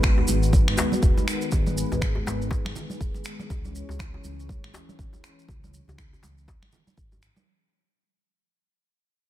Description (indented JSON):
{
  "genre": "afro house",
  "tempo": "121 BPM",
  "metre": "4/4",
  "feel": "swing 59% on 16ths",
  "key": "unclear",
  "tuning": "A4 = 441 Hz",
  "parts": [
    { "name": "warm analog pad", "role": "sustained chords", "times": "0.0-7.4 s", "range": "D#3 to C#5", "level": "-30 LUFS", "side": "left 1 dB", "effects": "chorus, sidechain pumping" },
    { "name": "smooth gliding synth bass", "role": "bass", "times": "0.0-7.3 s", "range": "D#1 to G#2", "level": "-28 LUFS", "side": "equal", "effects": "sidechain pumping" },
    { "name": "electronic finger snaps", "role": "drums", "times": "0.0-7.3 s", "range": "none", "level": "-33 LUFS", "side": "equal", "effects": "soft clipping on snare" },
    { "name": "electronic kick drum", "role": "drums", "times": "0.0-7.1 s", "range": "none", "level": "-24 LUFS", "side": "equal", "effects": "none" },
    { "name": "congas", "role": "percussion", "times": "0.0-7.4 s", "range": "none", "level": "-34 LUFS", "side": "right 2 dB", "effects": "none" },
    { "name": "maracas", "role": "percussion", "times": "0.0-7.4 s", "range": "none", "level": "-35 LUFS", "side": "right 3 dB", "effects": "none" },
    { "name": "djembe", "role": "percussion", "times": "0.2-7.2 s", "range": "none", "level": "-33 LUFS", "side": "left 1 dB", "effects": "none" }
  ],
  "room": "studio ambience",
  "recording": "dense, heavily limited modern master",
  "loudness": "-22 LUFS",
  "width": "side -13 dB against mid",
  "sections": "0.0-7.5 A section",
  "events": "fade-out 0.0-7.5",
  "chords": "0.0 G#m7; 3.5 C#m"
}